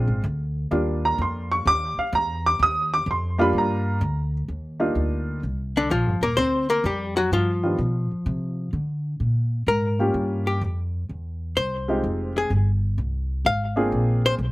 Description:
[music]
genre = jazz, small-group swing and bop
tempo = 127 BPM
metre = 4/4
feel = swing 69% on 8ths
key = Eb major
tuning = A4 = 441 Hz
[part]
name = dark baby grand piano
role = accompaniment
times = 0.0-14.4 s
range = Eb3 to Eb6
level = -22 LUFS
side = right 1 dB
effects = none
[part]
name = upright bass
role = bass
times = 0.0-14.5 s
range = Eb1 to D3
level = -25 LUFS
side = equal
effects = none
[part]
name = archtop guitar, miked and amplified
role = melody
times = 5.8-14.3 s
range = D3 to F5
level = -23 LUFS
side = left 2 dB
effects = slapback echo
[sound]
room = little or no reverb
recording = recorded outdoors, with no room sound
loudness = -21 LUFS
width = side -18 dB against mid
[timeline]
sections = 0.0-4.5 A section; 4.5-14.5 B section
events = none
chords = 0.0 Bb7 (rootless); 0.7 Ebmaj7; 6.4 D7alt; 7.3 G7b13; 8.3 Csus2; 10.1 Gm7b5; 11.1 C; 12.0 Fm9; 13.9 Bb7

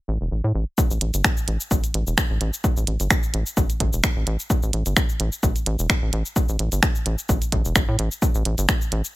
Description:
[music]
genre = minimal techno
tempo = 129 BPM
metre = 4/4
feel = swing 55% on 16ths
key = unclear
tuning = A4 = 442 Hz
[part]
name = rubbery square bass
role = bass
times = 0.1-9.0 s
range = E1 to A2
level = -23 LUFS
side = equal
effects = sidechain pumping
[part]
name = electronic kick drum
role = drums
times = 0.8-8.8 s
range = none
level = -22 LUFS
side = equal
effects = none
[part]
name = minimal click drum kit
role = drums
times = 0.8-9.1 s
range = cabasa, finger snaps, hi-hat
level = -24 LUFS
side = equal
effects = none
[sound]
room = little or no reverb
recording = none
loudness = -20 LUFS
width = side -18 dB against mid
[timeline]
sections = 0.8-9.2 A section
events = drop 0.8-9.2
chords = none

